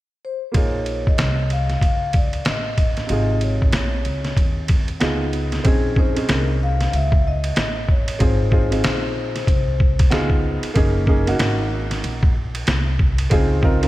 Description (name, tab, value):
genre	hip hop, jazz-hop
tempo	94 BPM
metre	4/4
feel	swing 61% on 16ths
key	unclear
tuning	A4 = 442 Hz
part	vibraphone with soft mallets	melody	0.2-10.1 s	Ab4 to F5	-28 LUFS	left 4 dB	analog delay
part	warm upright piano	accompaniment	0.5-13.9 s	C3 to Bb4	-24 LUFS	right 1 dB	none
part	upright bass	bass	0.5-13.9 s	Gb1 to Eb2	-22 LUFS	equal	none
part	trip hop sampler-style drum kit	drums	0.5-13.9 s	hi-hat, kick drum, ride cymbal, snare drum	-19 LUFS	equal	none
room	light reverb, studio reverb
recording	none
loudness	-17 LUFS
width	side -16 dB against mid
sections	0.5-5.6 A section; 5.6-13.9 B section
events	none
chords	0.0 N.C.; 0.5 Bbm11; 3.1 Dbmaj9/Ab; 5.0 Db7; 5.6 Bbm11; 8.2 Ab69; 10.1 Db7; 10.8 Gb69; 13.3 Dbmaj9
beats	| 0.54 1.18 1.82 2.46 | 3.10 3.73 4.37 5.01 | 5.65 6.29 6.93 7.56 | 8.20 8.84 9.48 10.12 | 10.76 11.39 12.03 12.67 | 13.31